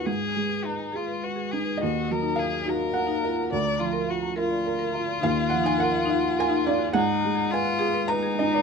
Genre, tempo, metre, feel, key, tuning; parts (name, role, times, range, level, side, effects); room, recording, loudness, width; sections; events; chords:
neoclassical piano and strings; 105 BPM; 3/4; rubato; Eb harmonic minor; A4 = 435 Hz
warm violin; melody; 0.0-8.6 s; Eb4 to D5; -28 LUFS; left 5 dB
felt-muted upright piano; accompaniment; 0.0-8.6 s; D2 to Bb5; -25 LUFS; right 3 dB
buzzing marimba with hard mallets; arpeggios; 0.1-8.6 s; Eb4 to Bb5; -32 LUFS; left 4 dB
light reverb; minimal, uncompressed stereo recording; -23 LUFS; side -5 dB against mid
0.0-8.6 A section
0.1 Abm; 1.8 Ebmadd9; 3.5 Bb/D; 5.2 Ebmadd9; 6.9 Abm